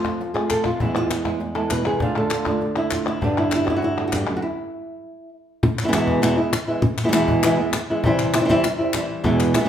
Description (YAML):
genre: flamenco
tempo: 199 BPM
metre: 4/4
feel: straight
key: E phrygian dominant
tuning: A4 = 440 Hz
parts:
  - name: flamenco guitar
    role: melody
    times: 0.0-9.7 s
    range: E2 to D5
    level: -20 LUFS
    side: equal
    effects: none
  - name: flamenco guitar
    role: stabs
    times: 0.0-4.4 s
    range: E2 to G4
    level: -27 LUFS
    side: right 4 dB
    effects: none
  - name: cajon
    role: percussion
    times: 0.0-9.7 s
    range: none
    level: -28 LUFS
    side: left 2 dB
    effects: none
  - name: palmas hand claps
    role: percussion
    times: 0.1-9.7 s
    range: none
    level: -29 LUFS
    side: left 4 dB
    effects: none
room: wet large studio reverb, RT60 1.2 s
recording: band playing live in one room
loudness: -18 LUFS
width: side -9 dB against mid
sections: 0.0-5.6 A section; 5.6-9.7 B section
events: drum fill 0.4-0.8; stop 4.4-5.6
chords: 0.0 F; 0.8 E; 2.0 Dm; 3.2 G; 4.4 N.C.; 5.6 E; 8.0 C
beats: 0.20 0.50 | 0.81 1.11 1.41 1.71 | 2.01 2.31 2.61 2.92 | 3.22 3.52 3.82 4.12 | 4.42 4.72 5.03 5.33 | 5.63 5.93 6.23 6.53 | 6.83 7.13 7.43 7.74 | 8.04 8.34 8.64 8.94 | 9.24 9.54